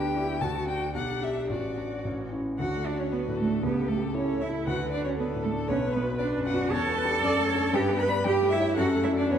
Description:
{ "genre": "quick classical-period movement for piano quartet", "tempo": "116 BPM", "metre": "2/4", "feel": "rubato", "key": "D major", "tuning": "A4 = 440 Hz", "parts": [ { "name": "rich violin", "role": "melody", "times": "0.0-9.4 s", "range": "A4 to B5", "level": "-34 LUFS", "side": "left 5 dB", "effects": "none" }, { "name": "clear cello", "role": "second line", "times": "0.0-9.4 s", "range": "A3 to B4", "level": "-29 LUFS", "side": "right 4 dB", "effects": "none" }, { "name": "clear concert grand piano", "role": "accompaniment", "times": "0.0-9.4 s", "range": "A1 to D5", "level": "-29 LUFS", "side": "left 2 dB", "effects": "none" }, { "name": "warm viola", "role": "accompaniment", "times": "0.0-9.4 s", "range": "C#4 to D5", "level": "-33 LUFS", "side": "right 1 dB", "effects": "none" } ], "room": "wet scoring stage reverb, RT60 1.6 s", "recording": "dark, warm production, lossy compression artefacts", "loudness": "-25 LUFS", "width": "side -8 dB against mid", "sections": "0.0-2.6 A section; 2.6-9.4 B section", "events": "none", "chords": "0.4 D; 0.9 G/B; 1.5 D/A; 2.1 A; 2.6 D; 3.6 A7/C#; 4.7 D; 5.7 Bm; 6.7 Em7; 7.2 D/F#; 7.7 G; 8.3 A7/G; 8.8 D/F#" }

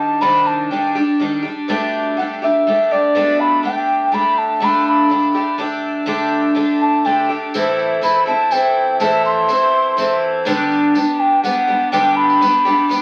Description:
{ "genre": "acoustic folk duo or small band", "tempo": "123 BPM", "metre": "3/4", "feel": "straight", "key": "G major", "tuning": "A4 = 440 Hz", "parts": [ { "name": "baroque flute", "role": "melody", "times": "0.0-13.0 s", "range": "D5 to C6", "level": "-18 LUFS", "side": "equal", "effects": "none" }, { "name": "picked twelve-string acoustic guitar", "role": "accompaniment", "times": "0.0-13.0 s", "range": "G2 to A4", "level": "-20 LUFS", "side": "equal", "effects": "none" }, { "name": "tambourine", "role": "percussion", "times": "7.5-13.0 s", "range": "none", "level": "-35 LUFS", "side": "equal", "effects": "none" } ], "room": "wet studio ambience, RT60 0.5 s", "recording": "very old 78 rpm record, vinyl crackle", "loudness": "-16 LUFS", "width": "mono", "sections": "0.0-7.5 A section; 7.5-13.0 B section", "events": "flute solo 0.0-7.5", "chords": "0.0 Cmadd9; 1.7 Gadd9/B; 4.6 Dsus4; 7.5 Am; 10.5 G" }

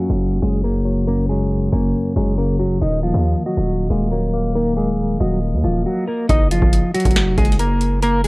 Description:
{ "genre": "hip hop, trap", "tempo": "138 BPM", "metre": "4/4", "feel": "half-time", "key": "F# major", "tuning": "A4 = 441 Hz", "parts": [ { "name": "semi-hollow electric guitar", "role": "melody", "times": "0.0-8.3 s", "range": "E#3 to D#5", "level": "-20 LUFS", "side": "equal", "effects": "low-pass filter, ping-pong delay" }, { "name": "barky tine electric piano", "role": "accompaniment", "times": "0.0-6.3 s", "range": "F#2 to D#5", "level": "-22 LUFS", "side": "left 1 dB", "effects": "fast stereo tremolo, low-pass filter" }, { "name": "distorted 808-style bass", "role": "bass", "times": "0.1-8.3 s", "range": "D#1 to D#2", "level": "-20 LUFS", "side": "equal", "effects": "distortion" }, { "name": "booming analog drum machine", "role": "drums", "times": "6.3-8.3 s", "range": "hi-hat, kick drum, snare drum", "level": "-16 LUFS", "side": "equal", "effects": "none" } ], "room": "little or no reverb", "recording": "worn, warbling old tape, cassette tape, warbly pitch drift, low-pass filter", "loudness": "-16 LUFS", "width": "side -24 dB against mid", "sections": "0.0-6.3 A section; 6.3-8.3 B section", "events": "filter sweep 0.0-6.3; stop 5.9-6.3", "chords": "0.0 F#; 2.8 D#m; 6.3 F#" }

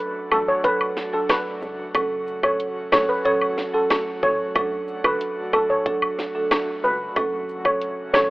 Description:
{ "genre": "dancehall", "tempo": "92 BPM", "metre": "4/4", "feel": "straight", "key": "unclear", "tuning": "A4 = 441 Hz", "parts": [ { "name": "airy breathy pad", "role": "sustained chords", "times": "0.0-8.3 s", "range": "C#3 to F#4", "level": "-35 LUFS", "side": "equal", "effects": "chorus, tremolo, sidechain pumping" }, { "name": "steel pan", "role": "melody", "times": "0.3-8.2 s", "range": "A4 to C#5", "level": "-23 LUFS", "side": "equal", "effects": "tape echo" }, { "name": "marimba with medium mallets", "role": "accompaniment", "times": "0.3-8.3 s", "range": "F#3 to A4", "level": "-25 LUFS", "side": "right 2 dB", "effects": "none" }, { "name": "plucky analog bass", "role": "bass", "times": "0.3-8.3 s", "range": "F#1 to D2", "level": "-35 LUFS", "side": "equal", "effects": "none" }, { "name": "cabasa and woodblock", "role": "percussion", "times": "0.3-8.3 s", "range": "none", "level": "-23 LUFS", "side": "equal", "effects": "none" }, { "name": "island pop drum kit", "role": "drums", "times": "0.6-8.3 s", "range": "hi-hat, kick drum, rim click, snare drum", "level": "-26 LUFS", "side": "equal", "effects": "vintage 12-bit sampler grit" } ], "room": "light reverb, small room ambience", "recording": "rough home demo mix, telephone sound", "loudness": "-20 LUFS", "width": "side -21 dB against mid", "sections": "0.0-8.3 A section", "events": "none", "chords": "0.0 D; 1.9 F#m; 4.6 D; 7.2 F#m" }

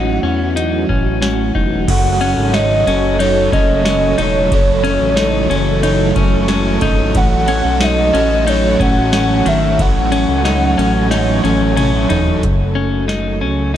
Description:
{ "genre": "dream pop", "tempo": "91 BPM", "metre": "4/4", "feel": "straight", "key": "F# dorian", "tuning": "A4 = 441 Hz", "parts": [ { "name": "warbly nostalgic lead", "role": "melody", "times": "0.0-11.8 s", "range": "C#5 to F#5", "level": "-19 LUFS", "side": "equal", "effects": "chorus, tremolo, digital delay" }, { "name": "string machine, violins", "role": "sustained chords", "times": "0.0-13.8 s", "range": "C#3 to G#5", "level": "-20 LUFS", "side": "right 1 dB", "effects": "ensemble chorus" }, { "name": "clean electric guitar", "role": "arpeggios", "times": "0.0-13.8 s", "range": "D#3 to D#4", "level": "-19 LUFS", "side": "left 5 dB", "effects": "wide subtle chorus, digital delay" }, { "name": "fat analog bass", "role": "bass", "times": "0.0-13.8 s", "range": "E1 to E2", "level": "-19 LUFS", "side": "equal", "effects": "none" }, { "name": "booming analog drum machine", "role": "drums", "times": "0.6-13.2 s", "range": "crash cymbal, hi-hat, kick drum, ride cymbal, snare drum, tambourine, toms", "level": "-20 LUFS", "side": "equal", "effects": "none" }, { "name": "vibraphone with medium mallets", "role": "texture", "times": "1.2-6.9, 11.1-12.7 s", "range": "A4 to F#5", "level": "-28 LUFS", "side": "right 3 dB", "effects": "none" }, { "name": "overdriven semi-hollow guitar", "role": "accompaniment", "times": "1.9-12.4 s", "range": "F#2 to A4", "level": "-22 LUFS", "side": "right 3 dB", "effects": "tremolo, wide subtle chorus" } ], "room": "light reverb, digital ambience", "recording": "none", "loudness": "-12 LUFS", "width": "side -10 dB against mid", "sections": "0.0-1.9 A section; 1.9-12.4 B section; 12.4-13.8 C section", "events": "drum fill 11.1-12.4", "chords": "0.0 A6; 1.9 F#m; 7.2 A6; 12.4 F#m" }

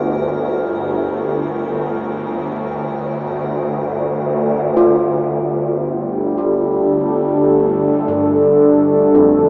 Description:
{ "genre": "dark ambient drone", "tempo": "free time", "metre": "none", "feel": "none", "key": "G minor", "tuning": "A4 = 440 Hz", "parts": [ { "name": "swarming drone", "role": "drone", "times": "0.0-9.5 s", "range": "G1 to D2", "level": "-22 LUFS", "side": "equal", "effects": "built-in reverb" }, { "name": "icy glass pad", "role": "texture", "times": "0.0-4.7 s", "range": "Bb4", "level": "-38 LUFS", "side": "equal", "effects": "chorus, built-in reverb" }, { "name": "deep dark ambient pad", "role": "sustained chords", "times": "5.7-9.5 s", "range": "G3 to A4", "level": "-16 LUFS", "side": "equal", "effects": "chorus, built-in reverb" }, { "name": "gamelan-type bossed gongs", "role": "arpeggios", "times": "4.8-9.5 s", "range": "F2 to F4", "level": "-22 LUFS", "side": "equal", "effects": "tape echo" } ], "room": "wet cathedral reverb, RT60 5.5 s", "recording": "small speaker sound", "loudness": "-17 LUFS", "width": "mono", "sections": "0.0-4.6 A section; 4.6-9.5 B section", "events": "none", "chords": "0.0 Bb6/G; 4.6 G5" }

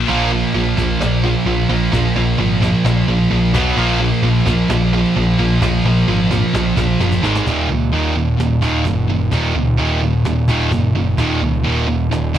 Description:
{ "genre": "hard rock", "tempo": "130 BPM", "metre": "4/4", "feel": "straight", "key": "unclear", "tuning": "A4 = 440 Hz", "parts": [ { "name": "sludgy distorted guitar", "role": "riff", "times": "0.0-12.4 s", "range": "Eb2 to B3", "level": "-20 LUFS", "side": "left 6 dB", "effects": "overdrive, cassette tape" }, { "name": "overdriven picked electric bass", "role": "bass", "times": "0.0-12.4 s", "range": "Eb1 to Db2", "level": "-19 LUFS", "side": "equal", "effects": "none" }, { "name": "heavy high-gain guitar", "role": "riff", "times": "0.1-12.4 s", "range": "Eb2 to B3", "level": "-18 LUFS", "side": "right 6 dB", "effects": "distortion, cassette tape" }, { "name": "heavy high-gain guitar", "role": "riff", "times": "0.1-7.2 s", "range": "Bb2 to Bb3", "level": "-22 LUFS", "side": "equal", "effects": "distortion, cassette tape" }, { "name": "cajon", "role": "drums", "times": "0.8-12.4 s", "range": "none", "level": "-24 LUFS", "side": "equal", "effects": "cassette tape" } ], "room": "light reverb", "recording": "home recording on cassette", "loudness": "-14 LUFS", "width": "side -10 dB against mid", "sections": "0.0-7.5 A section; 7.5-12.4 B section", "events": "drum fill 7.0-7.5", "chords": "0.0 Bb5; 3.5 B5; 3.8 Bb5; 7.2 Ab5; 7.5 Ebm" }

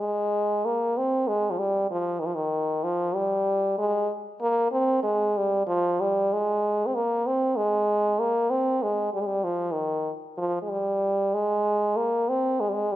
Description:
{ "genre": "arabic", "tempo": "95 BPM", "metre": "3/4", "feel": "straight", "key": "unclear", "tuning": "A4 = 439 Hz", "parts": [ { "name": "French horn with straight mute", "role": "solo", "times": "0.0-13.0 s", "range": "Eb3 to C4", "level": "-23 LUFS", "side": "equal", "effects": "none" } ], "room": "moderate recital hall reverb, RT60 1.6 s", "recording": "minimal, uncompressed stereo recording", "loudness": "-23 LUFS", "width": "side -14 dB against mid", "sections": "0.0-13.0 A section", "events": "none", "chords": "none" }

